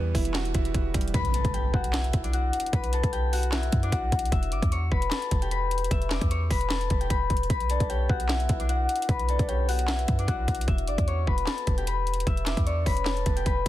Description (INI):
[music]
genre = hip hop, trap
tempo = 151 BPM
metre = 4/4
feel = half-time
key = B minor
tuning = A4 = 440 Hz
[part]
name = warm concert grand piano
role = accompaniment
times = 0.0-1.2 s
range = E3 to F#4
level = -32 LUFS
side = right 7 dB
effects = low-pass filter
[part]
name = clean 808-style bass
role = bass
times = 0.0-13.7 s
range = E1 to F#2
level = -27 LUFS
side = equal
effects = none
[part]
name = trap drum kit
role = drums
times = 0.1-13.7 s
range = handclaps, hi-hat, kick drum, snare drum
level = -28 LUFS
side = equal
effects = none
[part]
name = concert harp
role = melody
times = 1.1-13.7 s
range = D4 to E6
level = -29 LUFS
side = left 4 dB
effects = low-pass filter, digital delay
[part]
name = impact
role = sound effects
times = 1.1-2.7 s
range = none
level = -36 LUFS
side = equal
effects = none
[part]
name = soft octave-layered synth lead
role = second line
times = 7.7-13.4 s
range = B4 to E5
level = -36 LUFS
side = right 2 dB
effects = chorus, digital delay
[sound]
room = digital ambience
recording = dense, heavily limited modern master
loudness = -24 LUFS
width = side -14 dB against mid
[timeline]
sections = 0.0-1.1 A section; 1.1-13.7 B section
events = break 0.0-1.1; impact 1.1-2.7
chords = 0.0 Emadd9; 1.1 Bm; 4.3 Em; 7.5 Bm; 10.7 Em